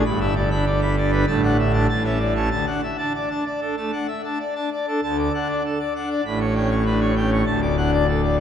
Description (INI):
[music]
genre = classical, organ toccata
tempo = 98 BPM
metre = 4/4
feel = straight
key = D major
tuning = A4 = 440 Hz
[part]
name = pipe organ, full organ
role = solo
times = 0.0-8.4 s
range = D1 to B5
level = -19 LUFS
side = equal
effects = none
[sound]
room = wet church reverb, RT60 2.9 s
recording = none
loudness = -19 LUFS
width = side -9 dB against mid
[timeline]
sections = 0.0-5.0 A section; 5.0-8.4 B section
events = none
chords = 0.1 Em7/G; 1.3 D/A; 1.9 A; 2.5 D; 6.3 A9; 7.5 D